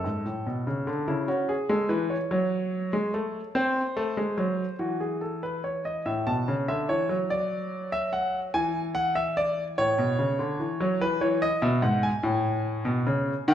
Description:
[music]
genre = classical, baroque-style two-part invention for grand piano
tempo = 48 BPM (dotted quarters)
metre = 6/8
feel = straight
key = F# minor, A major from 6.0 s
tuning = A4 = 440 Hz
[part]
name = clear grand piano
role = solo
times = 0.0-13.5 s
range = G#2 to A5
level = -24 LUFS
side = equal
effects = none
[sound]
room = wet recital hall reverb, RT60 1.4 s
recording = recorded in a church or concert hall, lossy compression artefacts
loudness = -25 LUFS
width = side -10 dB against mid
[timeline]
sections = 0.0-6.0 A section; 6.0-13.5 B section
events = none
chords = 0.0 F#m (rootless); 1.1 C#m; 2.3 F#madd9; 3.5 G#7; 4.8 C#m/E; 6.0 A; 7.3 Dadd9/F#; 8.5 E7; 9.8 A; 11.0 E; 12.2 Amaj9

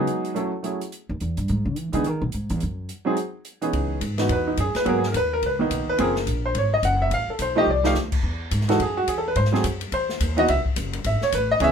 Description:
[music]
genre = jazz piano trio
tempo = 213 BPM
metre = 4/4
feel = swing 61% on 8ths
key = C# minor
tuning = A4 = 440 Hz
[part]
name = clear baby grand piano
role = melody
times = 0.0-11.7 s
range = D#3 to F#5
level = -22 LUFS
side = right 1 dB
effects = none
[part]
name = upright bass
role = bass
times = 0.0-11.7 s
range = F#1 to E3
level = -25 LUFS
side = equal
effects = none
[part]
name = open jazz drum kit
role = drums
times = 0.1-11.7 s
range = crash cymbal, hi-hat, kick drum, ride cymbal, snare drum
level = -32 LUFS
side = left 2 dB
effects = none
[sound]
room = moderate small room reverb, RT60 0.5 s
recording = minimal, uncompressed stereo recording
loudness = -21 LUFS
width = side -7 dB against mid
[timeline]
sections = 0.0-3.7 A section; 3.7-11.7 A section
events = upright bass solo 0.0-3.7; grand piano solo 3.7-11.7; drum fill 7.7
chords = 0.4 F#m7; 0.9 D#; 1.5 Emaj7; 2.6 G#7(no3)/F#; 3.2 N.C.; 3.7 C#m11; 4.9 G#m9; 5.4 C#sus2; 6.0 F#add9(#11); 7.1 F7; 8.2 Eadd9; 9.4 G#7; 10.5 C#sus4

